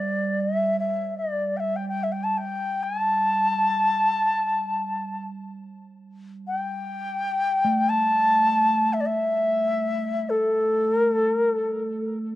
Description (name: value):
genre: world meditative, free-time meditation music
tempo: free time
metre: none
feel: none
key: unclear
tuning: A4 = 440 Hz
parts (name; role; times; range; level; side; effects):
- bright reedy xiao; melody; 0.0-12.2 s; A4 to A5; -22 LUFS; left 1 dB; cassette tape
- bronze singing bowl; texture; 0.0-12.4 s; G3 to A3; -31 LUFS; right 3 dB; cassette tape
room: wet booth ambience, RT60 0.2 s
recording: home recording on cassette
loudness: -21 LUFS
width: side -15 dB against mid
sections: 0.0-12.4 A section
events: none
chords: none